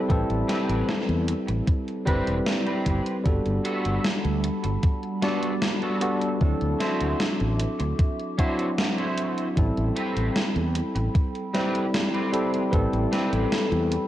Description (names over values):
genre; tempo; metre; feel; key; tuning
vaporwave; 76 BPM; 4/4; straight; A dorian; A4 = 436 Hz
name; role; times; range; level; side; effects
bell-like tine electric piano; accompaniment; 0.0-14.1 s; F#3 to D5; -26 LUFS; equal; analog chorus, tape echo
fretless electric bass; bass; 0.1-14.0 s; E1 to E2; -26 LUFS; equal; wide subtle chorus
electronic kick drum; drums; 0.1-12.9 s; none; -22 LUFS; equal; overdrive
gated 80s digital drum machine; drums; 0.1-14.1 s; hi-hat, snare drum; -30 LUFS; equal; gated reverb, gated reverb snare
electric guitar at the edge of break-up; riff; 0.5-13.9 s; B3 to C5; -33 LUFS; equal; ensemble chorus, tape echo
warbly tape-like pad; sustained chords; 4.0-14.1 s; G3 to D6; -34 LUFS; equal; chorus, built-in reverb
room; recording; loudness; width
light reverb, digital ambience; cassette tape; -22 LUFS; side -13 dB against mid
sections
0.0-14.1 A section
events
none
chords
0.0 Am9; 3.3 Gmaj9; 6.4 D9; 9.6 Am9